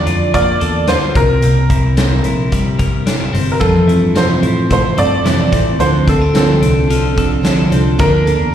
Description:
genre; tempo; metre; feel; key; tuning
jangly indie pop; 110 BPM; 4/4; straight; F major; A4 = 440 Hz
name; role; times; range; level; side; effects
bright upright piano; melody; 0.0-8.5 s; A4 to D5; -17 LUFS; right 1 dB; slapback echo, ping-pong delay
twelve-string electric guitar; arpeggios; 0.0-8.5 s; C3 to Bb4; -17 LUFS; left 3 dB; slapback echo, ping-pong delay
vintage muted picked electric bass; bass; 0.1-8.5 s; G1 to A2; -17 LUFS; equal; none
big rock drum kit; drums; 0.1-8.4 s; hi-hat, kick drum, snare drum; -19 LUFS; equal; none
picked plugged-in steel-string acoustic guitar; accompaniment; 3.6-8.5 s; F2 to A4; -17 LUFS; right 5 dB; slapback echo
room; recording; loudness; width
moderate club reverb, RT60 0.9 s; live gig heard through the venue's PA, recital hall reverb; -11 LUFS; side -10 dB against mid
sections
0.0-8.5 A section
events
none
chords
0.0 Bbmaj7; 1.2 C7; 3.6 Fmaj7; 5.8 Dm7; 8.0 Bbmaj7/D

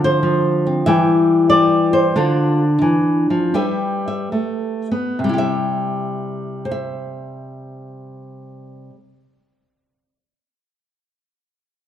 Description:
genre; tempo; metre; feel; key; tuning
solo jazz; 66-96 BPM; 4/4; swing 69% on 8ths, rubato; C major; A4 = 444 Hz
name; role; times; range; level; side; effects
flamenco guitar; solo; 0.0-10.2 s; C3 to E5; -16 LUFS; left 1 dB; none
room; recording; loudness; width
wet large studio reverb, RT60 1.2 s; dark, warm production; -15 LUFS; side -10 dB against mid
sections
0.0-5.2 A section; 5.2-8.6 B section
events
slowing down 0.0-5.2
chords
0.0 Dm9; 0.9 Em7; 2.2 Dm9; 3.5 G69; 5.2 C

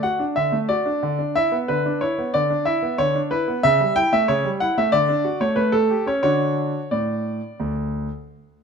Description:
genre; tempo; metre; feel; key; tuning
classical-period piano sonatina; 91 BPM; 4/4; straight; D major; A4 = 439 Hz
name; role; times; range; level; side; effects
clear concert grand piano; solo; 0.0-8.1 s; D2 to G5; -19 LUFS; equal; none
room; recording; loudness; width
moderate recital hall reverb, RT60 1.8 s; close, detailed microphones; -19 LUFS; side -6 dB against mid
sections
0.0-8.6 A section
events
none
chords
0.0 D; 1.0 E5/D; 3.6 A7/C#; 4.9 D; 5.6 A7; 6.3 D

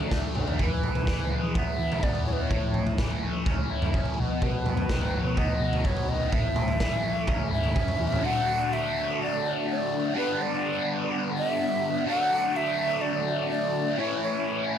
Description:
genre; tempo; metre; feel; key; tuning
psychedelic rock; 125 BPM; 4/4; straight; unclear; A4 = 441 Hz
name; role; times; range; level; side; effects
overdriven electric guitar; riff; 0.0-14.8 s; G2 to F#4; -28 LUFS; left 1 dB; phaser
hollow-body short-scale picked electric bass; bass; 0.0-8.2 s; G#1 to E3; -32 LUFS; equal; none
raw garage drum kit; drums; 0.0-8.2 s; kick drum, snare drum, toms; -27 LUFS; equal; none
breathy hollow jazz flute; melody; 0.6-14.8 s; B4 to F#5; -30 LUFS; right 1 dB; analog delay
room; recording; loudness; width
light reverb, small room ambience; none; -24 LUFS; side -9 dB against mid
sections
0.0-8.2 A section; 8.2-14.8 B section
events
drum fill 0.1-0.6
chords
0.0 D; 0.6 E; 2.5 A; 4.2 B; 6.3 A; 8.2 Dadd9; 10.2 G; 12.1 Dadd9; 14.0 A

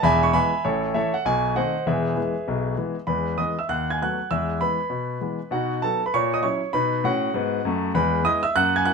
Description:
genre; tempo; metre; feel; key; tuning
jazz, stride piano; 197 BPM; 4/4; swing 65% on 8ths; E major; A4 = 442 Hz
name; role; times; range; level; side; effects
clear grand piano; solo; 0.0-8.9 s; E1 to G#6; -21 LUFS; equal; none
room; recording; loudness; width
moderate studio reverb, RT60 0.6 s; minimal, uncompressed stereo recording; -21 LUFS; side -5 dB against mid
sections
0.0-3.1 A section; 3.1-8.9 A section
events
none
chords
0.0 E; 0.7 A; 1.3 B7b9; 1.9 E; 3.7 B7/D#; 4.3 E; 5.5 B; 6.1 F#7/A#; 6.7 B; 8.0 E

